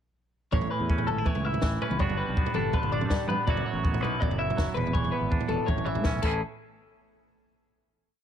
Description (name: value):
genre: math rock and midwest emo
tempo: 163 BPM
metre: 4/4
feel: straight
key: A major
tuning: A4 = 440 Hz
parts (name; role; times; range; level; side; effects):
- twangy electric guitar; accompaniment; 0.5-6.4 s; E2 to G#4; -32 LUFS; right 5 dB; plate reverb
- twelve-string electric guitar; arpeggios; 0.5-6.4 s; A4 to E5; -31 LUFS; left 5 dB; plate reverb
- growling fingered electric bass; bass; 0.5-6.4 s; E1 to A2; -32 LUFS; left 1 dB; overdrive
- compact cocktail drum kit; drums; 0.5-6.3 s; crash cymbal, kick drum, snare drum, toms; -28 LUFS; right 1 dB; none
room: light reverb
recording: lossy compression artefacts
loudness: -25 LUFS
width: side -9 dB against mid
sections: 0.5-6.4 A section; 6.4-7.9 final hit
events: drum fill 6.2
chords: 0.5 Aadd9; 2.0 Gmaj7; 3.5 D69/F#; 4.8 E7; 5.7 Aadd9; 6.2 Amaj7; 6.4 N.C.